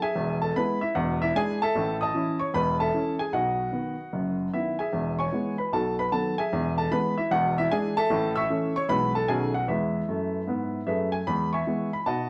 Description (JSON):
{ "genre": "jazz, stride piano", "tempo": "151 BPM", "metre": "4/4", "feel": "swing 65% on 8ths", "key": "E major", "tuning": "A4 = 440 Hz", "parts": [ { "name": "clear upright piano", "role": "solo", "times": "0.0-12.3 s", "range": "E1 to E6", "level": "-27 LUFS", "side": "equal", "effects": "none" } ], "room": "wet club reverb, RT60 0.9 s", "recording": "heard from further back in the room", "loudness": "-27 LUFS", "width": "mono", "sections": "0.0-11.3 A section; 11.3-12.3 A section", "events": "none", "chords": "0.2 E; 1.0 E7; 1.7 A; 3.3 B; 4.9 E; 5.7 B7; 6.5 E; 7.3 E7; 8.1 A; 8.9 E/B; 9.3 B9; 9.7 E", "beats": "| 0.16 0.56 0.95 1.35 | 1.75 2.14 2.54 2.94 | 3.33 3.73 4.13 4.53 | 4.92 5.32 5.72 6.11 | 6.51 6.91 7.30 7.70 | 8.10 8.49 8.89 9.29 | 9.69 10.08 10.48 10.87 | 11.27 11.67 12.06" }